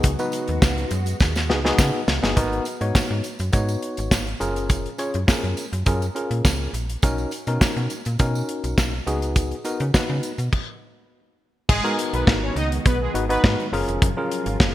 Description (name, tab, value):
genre	early-eighties boogie funk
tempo	103 BPM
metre	4/4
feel	straight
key	G# dorian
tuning	A4 = 441 Hz
part	tine electric piano	accompaniment	0.0-14.7 s	B3 to C#5	-26 LUFS	left 1 dB	overdrive, medium stereo tremolo
part	soft string machine	sustained chords	0.0-2.3, 12.0-14.7 s	C#3 to F#4	-33 LUFS	equal	phaser, ensemble chorus
part	slap-like FM bass	bass	0.0-14.7 s	E#1 to C#3	-25 LUFS	equal	none
part	modern studio drum kit	drums	0.0-14.7 s	crash cymbal, hi-hat, kick drum, snare drum	-21 LUFS	equal	gated reverb
part	tambourine	percussion	0.0-10.5 s	none	-37 LUFS	right 6 dB	none
part	analog synth brass	second line	11.7-13.4 s	G#3 to D#5	-26 LUFS	right 1 dB	chorus
room	light reverb, small room ambience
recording	bright 1980s-style digital production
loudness	-20 LUFS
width	side -14 dB against mid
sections	0.0-2.4 A section; 2.4-11.7 B section; 11.7-14.7 A section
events	drum fill 1.2-2.4; stop 10.5-11.7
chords	0.0 C#7sus4; 2.4 G#m9; 4.4 F#maj7; 7.0 Bmaj9; 9.1 C#7sus4; 11.7 G#m9; 13.7 F#maj7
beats	| 0.04 0.62 1.20 1.79 | 2.37 2.95 3.54 4.12 | 4.70 5.28 5.87 6.45 | 7.03 7.61 8.20 8.78 | 9.36 9.94 10.53 11.11 | 11.69 12.27 12.86 13.44 | 14.02 14.60